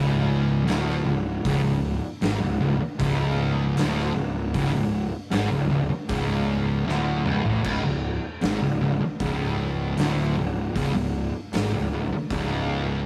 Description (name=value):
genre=stoner and doom metal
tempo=77 BPM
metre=4/4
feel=straight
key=unclear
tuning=A4 = 440 Hz
part: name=thick fuzz guitar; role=riff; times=0.0-13.1 s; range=C#2 to A2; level=-26 LUFS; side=equal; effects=distortion
part: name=fuzz picked electric bass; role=bass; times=0.0-13.0 s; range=C#1 to A1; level=-31 LUFS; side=equal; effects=overdrive
part: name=oversized low-tuned drum kit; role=drums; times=0.7-12.5 s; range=crash cymbal, hi-hat, kick drum, snare drum, toms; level=-33 LUFS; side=equal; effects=none
room=wet small room reverb, RT60 0.5 s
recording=rough rehearsal-room recording, tube saturation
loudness=-25 LUFS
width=mono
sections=0.0-13.1 A section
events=drum fill 6.9-7.7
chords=0.0 C#5